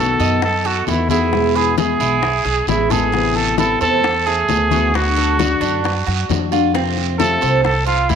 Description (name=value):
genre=latin, Cuban son and guajira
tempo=133 BPM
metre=4/4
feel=straight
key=A harmonic minor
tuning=A4 = 442 Hz
part: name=breathy trumpet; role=melody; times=0.0-8.2 s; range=E4 to A4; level=-18 LUFS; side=right 1 dB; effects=slapback echo
part: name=nylon-string guitar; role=accompaniment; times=0.0-8.2 s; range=B2 to F#4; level=-22 LUFS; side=left 10 dB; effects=none
part: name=Cuban tres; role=arpeggios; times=0.0-8.2 s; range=A3 to D#5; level=-22 LUFS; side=right 12 dB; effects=none
part: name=upright bass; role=bass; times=0.0-8.2 s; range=A1 to F#2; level=-21 LUFS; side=right 1 dB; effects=none
part: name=bongos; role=percussion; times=0.2-8.2 s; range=none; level=-27 LUFS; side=left 10 dB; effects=none
part: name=congas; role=percussion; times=0.2-8.2 s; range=none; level=-28 LUFS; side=left 9 dB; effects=none
part: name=guiro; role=percussion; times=0.2-8.2 s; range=none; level=-28 LUFS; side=right 14 dB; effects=none
room=moderate plate reverb, RT60 2.5 s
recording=1960s-style stereo with parts hard left and right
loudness=-14 LUFS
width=side -7 dB against mid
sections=0.0-3.1 A section; 3.1-8.2 A section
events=drum fill 2.7-3.1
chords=0.0 B7; 1.3 E; 3.1 Amadd9; 4.9 D; 6.7 Fmaj7